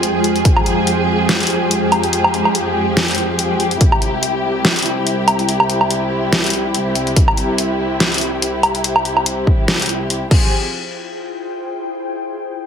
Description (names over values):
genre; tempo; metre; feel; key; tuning
heavy wobble dubstep; 143 BPM; 4/4; swing 55% on 16ths, half-time; F harmonic minor; A4 = 441 Hz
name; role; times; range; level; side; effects
dark studio string section; sustained chords; 0.0-10.5 s; C2 to Ab4; -19 LUFS; equal; sidechain pumping
dubstep drum kit; drums; 0.0-10.4 s; crash cymbal, hi-hat, snare drum, woodblock; -17 LUFS; equal; none
ethereal airy pad; texture; 0.0-12.2 s; Ab3 to G5; -23 LUFS; equal; ensemble chorus, built-in reverb, sidechain pumping
electronic kick drum; drums; 0.5, 3.8-3.9, 7.2-10.4 s; none; -14 LUFS; equal; none
room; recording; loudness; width
moderate plate reverb, RT60 1.2 s; heavily compressed radio sound; -14 LUFS; side -7 dB against mid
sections
0.0-10.5 A section; 10.5-12.2 B section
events
fade-out on ambient pad 0.0-10.5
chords
0.0 Fmadd9; 3.8 C; 10.3 Fmadd9